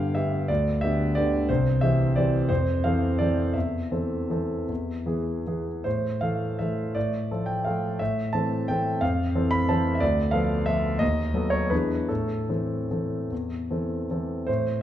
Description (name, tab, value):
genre	classical, piano waltz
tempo	143-192 BPM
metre	3/4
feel	rubato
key	A minor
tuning	A4 = 440 Hz
part	warm concert grand piano	solo	0.0-14.8 s	C2 to B5	-23 LUFS	equal	none
room	wet recital hall reverb, RT60 1.6 s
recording	dark, warm production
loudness	-23 LUFS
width	side -11 dB against mid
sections	0.0-14.5 A section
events	none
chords	0.0 G; 1.5 C; 2.5 Fmaj7; 3.5 Am/E; 4.7 E; 5.8 Am; 7.0 Dm/A; 8.0 Am; 9.0 Fmaj7; 10.0 Bm7b5/D; 11.0 B7/D#; 11.7 E7; 12.1 Am